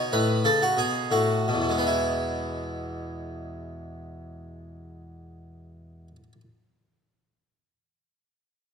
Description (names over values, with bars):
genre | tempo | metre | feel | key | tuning
classical, baroque-style suite movement for harpsichord | 84 BPM | 3/4 | rubato | E major | A4 = 440 Hz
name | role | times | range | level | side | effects
harpsichord | solo | 0.0-6.4 s | E2 to C#5 | -25 LUFS | equal | none
room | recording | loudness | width
moderate recital hall reverb, RT60 1.8 s | close, detailed microphones | -23 LUFS | side -6 dB against mid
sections
0.0-1.9 A section; 1.9-6.2 B section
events
slowing down 0.0-1.9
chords
0.0 B7; 1.9 E